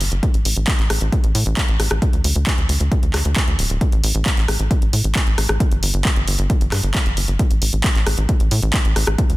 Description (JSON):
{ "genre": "uplifting trance", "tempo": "134 BPM", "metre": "4/4", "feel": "straight", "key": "unclear", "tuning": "A4 = 441 Hz", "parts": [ { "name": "tight sequencer bass", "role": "bass", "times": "0.0-9.4 s", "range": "D1 to A2", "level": "-19 LUFS", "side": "equal", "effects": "sidechain pumping" }, { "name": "big-room dance drum kit", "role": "drums", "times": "0.0-9.4 s", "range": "handclaps, hi-hat, rim click", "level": "-22 LUFS", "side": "equal", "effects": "none" }, { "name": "electronic kick drum", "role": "drums", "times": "0.2-9.3 s", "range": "none", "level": "-19 LUFS", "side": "equal", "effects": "none" } ], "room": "digital ambience", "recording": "dense, heavily limited modern master", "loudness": "-16 LUFS", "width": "side -18 dB against mid", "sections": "0.0-9.4 A section", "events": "none", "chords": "none" }